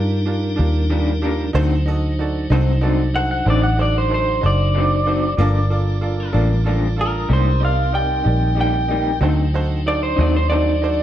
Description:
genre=blues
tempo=63 BPM (dotted quarters)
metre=12/8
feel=straight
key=unclear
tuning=A4 = 440 Hz
part: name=bright upright piano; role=accompaniment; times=0.0-11.0 s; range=D4 to Eb5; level=-26 LUFS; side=right 5 dB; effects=none
part: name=tonewheel organ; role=sustained chords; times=0.0-11.0 s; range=F#3 to C5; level=-26 LUFS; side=equal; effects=slow rotary speaker
part: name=vintage muted fingered electric bass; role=bass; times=0.0-11.0 s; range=F#1 to G2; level=-18 LUFS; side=equal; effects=none
part: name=electric guitar through a small old amp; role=accompaniment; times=0.9-10.7 s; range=G2 to Eb4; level=-24 LUFS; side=left 3 dB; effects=tremolo
part: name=electric guitar through a small old amp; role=melody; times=3.2-11.0 s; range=Bb4 to G5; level=-21 LUFS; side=equal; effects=spring reverb
room=moderate studio reverb, RT60 0.6 s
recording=dark, warm production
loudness=-16 LUFS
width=side -11 dB against mid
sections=0.0-11.0 A section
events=clean electric guitar solo 0.0-11.0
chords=0.0 Ebmaj7; 1.5 D7b9; 5.4 Gm7; 7.3 Cm7; 9.2 D7b9

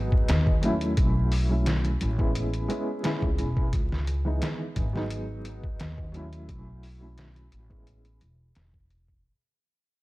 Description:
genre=trip hop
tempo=87 BPM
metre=4/4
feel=straight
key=unclear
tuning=A4 = 441 Hz
part: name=felt-muted upright piano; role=accompaniment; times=0.0-8.2 s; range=E3 to E4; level=-31 LUFS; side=equal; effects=tremolo, tape echo
part: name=upright bass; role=bass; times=0.0-9.2 s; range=E1 to D#2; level=-28 LUFS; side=equal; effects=none
part: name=trip hop sampler-style drum kit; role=drums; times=0.1-9.2 s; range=hi-hat, kick drum, snare drum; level=-27 LUFS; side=equal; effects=studio reverb
room=little or no reverb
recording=dark, warm production, vinyl crackle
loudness=-24 LUFS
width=side -19 dB against mid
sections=0.0-9.2 A section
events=fade-out 0.0-9.2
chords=0.0 G#m7; 1.0 B7sus4; 2.4 Amaj9; 3.7 C#m9; 5.1 G#m7; 6.5 B7sus4; 7.9 Amaj9

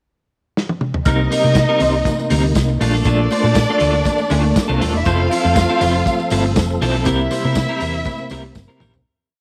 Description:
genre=disco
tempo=120 BPM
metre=4/4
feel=straight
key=unclear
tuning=A4 = 439 Hz
part: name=warm soul drum kit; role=drums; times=0.6-9.0 s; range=hi-hat, kick drum, snare drum, toms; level=-24 LUFS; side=equal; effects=none
part: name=warm studio violin section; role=second line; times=1.1-8.8 s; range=Bb3 to F5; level=-23 LUFS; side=equal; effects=none
part: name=clean electric guitar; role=accompaniment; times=1.1-9.0 s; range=F3 to C5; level=-24 LUFS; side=equal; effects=tremolo
part: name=percussive tonewheel organ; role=sustained chords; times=1.1-9.0 s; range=C3 to A4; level=-25 LUFS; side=equal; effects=chorus vibrato, fast rotary speaker
part: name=hollow-body short-scale fingered electric bass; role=bass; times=1.1-9.0 s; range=Eb1 to C3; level=-21 LUFS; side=equal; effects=none
part: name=tambourine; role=percussion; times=1.1-9.0 s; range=none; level=-38 LUFS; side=equal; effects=none
part: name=congas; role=percussion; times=1.4-8.9 s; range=none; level=-32 LUFS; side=equal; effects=none
room=moderate echo chamber reverb, RT60 2.5 s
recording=none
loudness=-17 LUFS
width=mono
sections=0.0-1.1 pickup bar; 1.1-9.1 pre-chorus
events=drum fill 0.6-1.1, 8.6-9.1; fade-out 7.1-9.1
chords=0.0 N.C.; 1.1 Cm7; 2.8 Bbmaj7; 5.1 Fmaj7; 7.1 C7

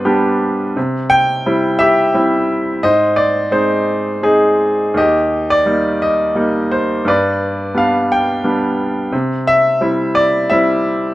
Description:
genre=classical, lyrical solo piano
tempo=86 BPM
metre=3/4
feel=rubato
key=unclear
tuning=A4 = 440 Hz
part: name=bright concert grand piano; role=solo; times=0.0-11.1 s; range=Eb2 to G5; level=-13 LUFS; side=equal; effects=none
room=light reverb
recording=none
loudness=-13 LUFS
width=side -16 dB against mid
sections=0.0-11.1 A section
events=none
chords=0.0 G; 0.8 C; 2.8 Ab; 5.0 Eb; 7.1 G; 9.1 C

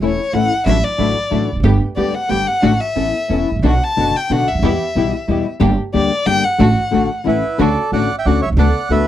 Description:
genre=tango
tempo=183 BPM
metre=3/4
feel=rubato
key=D major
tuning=A4 = 438 Hz
part: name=warm violin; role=second line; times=0.0-7.3 s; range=C#5 to A5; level=-19 LUFS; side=left 2 dB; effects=none
part: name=nylon-string guitar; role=accompaniment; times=0.0-9.1 s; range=B2 to G4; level=-18 LUFS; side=left 7 dB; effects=none
part: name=warm chamber string section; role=stabs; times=0.0-9.0 s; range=F#3 to A4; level=-23 LUFS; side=right 4 dB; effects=none
part: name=upright bass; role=bass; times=0.0-9.0 s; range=E1 to E2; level=-18 LUFS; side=right 2 dB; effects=none
part: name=bandoneon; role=melody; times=7.3-9.1 s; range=E4 to G5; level=-19 LUFS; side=right 4 dB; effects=none
room=light reverb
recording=dry, close 1970s-style studio recording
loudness=-14 LUFS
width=side -12 dB against mid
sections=0.0-7.6 A section; 7.6-9.1 B section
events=violin solo 0.0-7.6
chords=0.0 A; 0.7 Dadd9/A; 1.6 Gadd9; 2.6 D/A; 3.0 Aadd9; 3.6 Bm; 4.6 Em; 5.6 Gm; 6.6 D/A; 7.3 A; 7.6 Dmaj7

